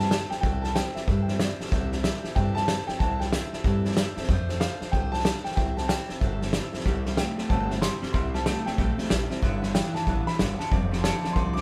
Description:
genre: rockabilly.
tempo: 187 BPM.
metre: 4/4.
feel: swing 63% on 8ths.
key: C major.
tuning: A4 = 440 Hz.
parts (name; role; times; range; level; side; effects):
warm upright piano; melody; 0.0-11.6 s; D5 to D6; -34 LUFS; equal; none.
picked swing-style acoustic guitar; accompaniment; 0.0-11.6 s; C3 to D5; -38 LUFS; equal; none.
upright bass; bass; 0.0-11.6 s; F1 to G2; -31 LUFS; equal; none.
vintage drum kit; drums; 0.1-11.6 s; hi-hat, kick drum, snare drum; -30 LUFS; equal; none.
electric guitar through a small old amp; riff; 6.9-11.6 s; F2 to A3; -33 LUFS; equal; none.
room: moderate studio reverb, RT60 0.7 s.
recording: band playing live in one room.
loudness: -26 LUFS.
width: mono.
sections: 0.0-11.6 A section.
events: none.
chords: 0.0 C6; 4.3 F6; 5.6 C6; 9.4 G6; 10.7 F6.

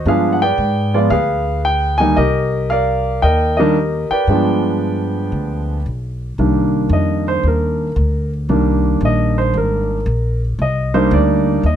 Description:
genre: jazz piano trio.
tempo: 114 BPM.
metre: 4/4.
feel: swing 66% on 8ths.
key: C minor.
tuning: A4 = 437 Hz.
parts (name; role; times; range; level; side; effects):
warm concert grand piano; melody; 0.0-11.8 s; Eb3 to Ab5; -16 LUFS; right 1 dB; none.
upright bass; bass; 0.0-11.8 s; Ab1 to Ab2; -18 LUFS; left 1 dB; none.
room: little or no reverb.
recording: close, detailed microphones.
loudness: -14 LUFS.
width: side -9 dB against mid.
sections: 0.0-6.4 A section; 6.4-11.8 B section.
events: grand piano solo 6.4-11.8.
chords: 0.1 G7b9; 2.2 Cm9; 4.3 G7b9; 6.4 Cm9.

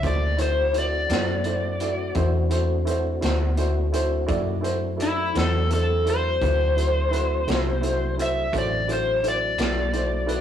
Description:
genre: slow blues.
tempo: 56 BPM (dotted quarters).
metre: 12/8.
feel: straight.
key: unclear.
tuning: A4 = 440 Hz.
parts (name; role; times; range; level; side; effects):
overdriven slide guitar; melody; 0.0-10.4 s; E4 to E5; -24 LUFS; left 2 dB; slapback echo.
warm upright piano; accompaniment; 0.0-10.4 s; E4 to D5; -28 LUFS; right 2 dB; none.
mellow tonewheel organ; sustained chords; 0.0-10.4 s; C#3 to G4; -34 LUFS; left 2 dB; slow rotary speaker, chorus vibrato.
vintage muted fingered electric bass; bass; 0.0-10.4 s; A1 to F#2; -25 LUFS; equal; none.
vintage drum kit; drums; 0.0-10.4 s; hi-hat, kick drum, snare drum; -30 LUFS; equal; none.
room: light reverb.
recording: rough rehearsal-room recording, warm saturation, small room ambience.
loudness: -21 LUFS.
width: side -9 dB against mid.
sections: 0.0-10.4 A section.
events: none.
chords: 0.0 D7.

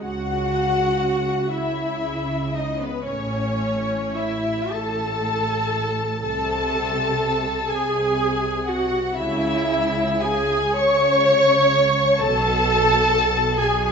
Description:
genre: classical, slow romantic movement for string orchestra.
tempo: 34-43 BPM (dotted quarters).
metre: 6/8.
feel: rubato.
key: C# minor.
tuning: A4 = 440 Hz.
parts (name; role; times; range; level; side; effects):
rich chamber violin section; melody; 0.0-13.9 s; B4 to C#6; -28 LUFS; left 5 dB; none.
rich studio violin section; second line; 0.0-13.9 s; B4 to C#6; -27 LUFS; left 3 dB; none.
rich chamber viola section; accompaniment; 0.0-13.9 s; B3 to C#5; -21 LUFS; right 1 dB; none.
rich chamber cello section; bass; 0.0-13.9 s; A2 to C#3; -28 LUFS; right 2 dB; none.
rich chamber double bass section; bass; 0.0-13.9 s; A1 to C#2; -30 LUFS; right 2 dB; none.
room: wet scoring stage reverb, RT60 1.5 s.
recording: nothing above 7.9 kHz.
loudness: -19 LUFS.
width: side -6 dB against mid.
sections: 0.0-13.9 A section.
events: none.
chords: 0.0 C#m; 3.1 A; 6.2 G#/B#; 9.2 C#m; 12.2 F#madd9/B (rootless).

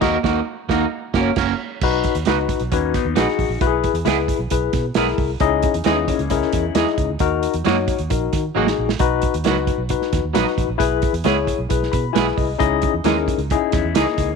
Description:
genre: uptempo 1960s-style soul.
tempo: 133 BPM.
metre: 4/4.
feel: straight.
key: B major.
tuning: A4 = 439 Hz.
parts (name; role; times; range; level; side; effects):
tine electric piano; accompaniment; 0.0-14.3 s; A#3 to B5; -20 LUFS; left 12 dB; medium stereo tremolo.
electric guitar at the edge of break-up; stabs; 0.0-14.1 s; E3 to B4; -23 LUFS; right 14 dB; spring reverb.
vintage muted fingered electric bass; bass; 0.0-14.4 s; F#1 to D#3; -25 LUFS; right 1 dB; none.
warm soul drum kit; drums; 0.0-14.3 s; crash cymbal, hi-hat, kick drum, snare drum; -23 LUFS; right 6 dB; none.
electric guitar through a small old amp; riff; 2.7-6.9, 13.5-14.4 s; G#3 to G#4; -26 LUFS; left 12 dB; phaser.
room: light reverb, small room ambience.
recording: 1960s-style stereo with parts hard left and right.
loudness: -17 LUFS.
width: side -5 dB against mid.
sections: 0.0-1.8 A section; 1.8-14.4 B section.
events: band accent 0.0-1.8; drum fill 8.6-9.0; tine electric piano fill 11.7-12.6.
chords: 0.0 D#m; 0.9 F#; 1.8 B; 3.6 E/B; 5.4 C#madd9; 7.2 D#m; 9.0 B; 10.8 E/B; 12.6 C#madd9.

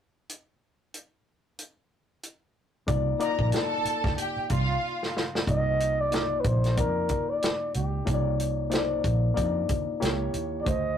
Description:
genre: lush 1970s-style soul.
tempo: 92 BPM.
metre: 4/4.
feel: swing 58% on 16ths.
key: C dorian.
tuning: A4 = 442 Hz.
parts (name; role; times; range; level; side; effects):
warm soul drum kit; drums; 0.3-10.8 s; hi-hat, kick drum, snare drum; -30 LUFS; equal; none.
reed electric piano; accompaniment; 2.9-11.0 s; D3 to Eb5; -30 LUFS; left 5 dB; none.
vintage muted fingered electric bass; bass; 2.9-11.0 s; Bb1 to F2; -28 LUFS; right 2 dB; none.
warm studio violin section; second line; 3.2-5.1 s; F4 to Bb5; -30 LUFS; right 2 dB; none.
breathy flugelhorn; melody; 5.5-11.0 s; G4 to Eb5; -28 LUFS; right 1 dB; none.
room: wet small room ambience, RT60 0.5 s.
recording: rough rehearsal-room recording, tube saturation.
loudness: -24 LUFS.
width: side -9 dB against mid.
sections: 0.3-2.9 A section; 2.9-5.5 B section; 5.5-11.0 C section.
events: drum fill 4.8-5.5.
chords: 0.3 N.C.; 2.9 Cm11; 10.0 C#dim7.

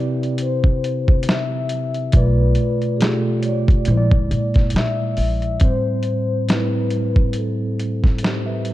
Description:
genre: lo-fi hip hop.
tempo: 69 BPM.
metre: 4/4.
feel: swing 56% on 16ths.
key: A minor.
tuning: A4 = 436 Hz.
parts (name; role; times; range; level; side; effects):
vibraphone with soft mallets; melody; 0.0-8.6 s; G#4 to E5; -26 LUFS; left 4 dB; none.
mellow tine electric piano; accompaniment; 0.0-8.7 s; A2 to E5; -21 LUFS; equal; medium stereo tremolo.
lo-fi sampler-style drum kit; drums; 0.2-8.7 s; hi-hat, kick drum, snare drum; -18 LUFS; equal; overdrive.
upright bass; bass; 1.1-5.6 s; Bb1 to Bb2; -20 LUFS; equal; none.
room: light reverb, studio reverb.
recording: dark, warm production.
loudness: -16 LUFS.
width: side -15 dB against mid.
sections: 0.0-5.6 A section; 5.6-8.7 B section.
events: none.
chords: 0.0 Cmaj7; 2.1 Bm7b5; 3.9 Bb7#11; 5.6 Am9.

